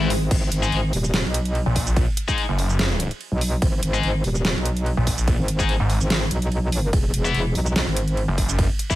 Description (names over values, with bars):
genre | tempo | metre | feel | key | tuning
heavy wobble dubstep | 145 BPM | 4/4 | swing 54% on 16ths, half-time | G# minor | A4 = 441 Hz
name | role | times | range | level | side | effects
tight distorted guitar | stabs | 0.0-9.0 s | E3 to G#4 | -28 LUFS | left 6 dB | distortion, ping-pong delay
metallic wobble bass | bass | 0.0-8.3 s | D#1 to B1 | -22 LUFS | equal | chorus, overdrive
dubstep drum kit | drums | 0.1-9.0 s | crash cymbal, hi-hat, ride cymbal, shaker, snare drum | -27 LUFS | right 1 dB | overdrive
electronic kick drum | drums | 0.3-9.0 s | none | -23 LUFS | equal | overdrive
snarling distorted saw bass | bass | 1.7-8.7 s | F#1 to A#1 | -21 LUFS | equal | overdrive
room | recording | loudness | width
little or no reverb | none | -19 LUFS | side -15 dB against mid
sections
0.0-9.0 A section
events
none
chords
0.3 G#m; 6.9 E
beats
| 0.31 0.72 1.14 1.55 | 1.97 2.38 2.79 3.21 | 3.62 4.03 4.45 4.86 | 5.28 5.69 6.10 6.52 | 6.93 7.34 7.76 8.17 | 8.59